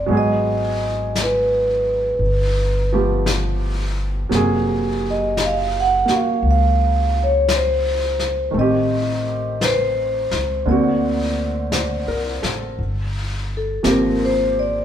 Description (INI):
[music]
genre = jazz ballad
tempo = 57 BPM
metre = 4/4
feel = swing 68% on 8ths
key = unclear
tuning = A4 = 440 Hz
[part]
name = vibraphone with medium mallets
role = melody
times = 0.0-14.8 s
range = A4 to Gb5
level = -20 LUFS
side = equal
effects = none
[part]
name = clear concert grand piano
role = accompaniment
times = 0.0-14.8 s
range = C3 to C5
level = -22 LUFS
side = right 2 dB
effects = none
[part]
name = upright bass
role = bass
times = 0.0-14.8 s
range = Gb1 to D2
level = -23 LUFS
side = equal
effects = none
[part]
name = vintage brush drum kit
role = drums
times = 0.1-14.8 s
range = brushed snare drum, hi-hat, snare drum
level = -27 LUFS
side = left 3 dB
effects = none
[sound]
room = moderate large studio reverb, RT60 1.3 s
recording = band playing live in one room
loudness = -17 LUFS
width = side -10 dB against mid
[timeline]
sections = 0.0-14.8 A section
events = none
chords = 0.1 Abm7; 2.2 G9; 4.3 Gbadd9; 8.5 Am7b5; 10.7 D7b13; 12.8 Gm7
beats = | 0.09 1.15 2.20 3.26 | 4.31 5.37 6.43 7.49 | 8.54 9.60 10.66 11.72 | 12.78 13.84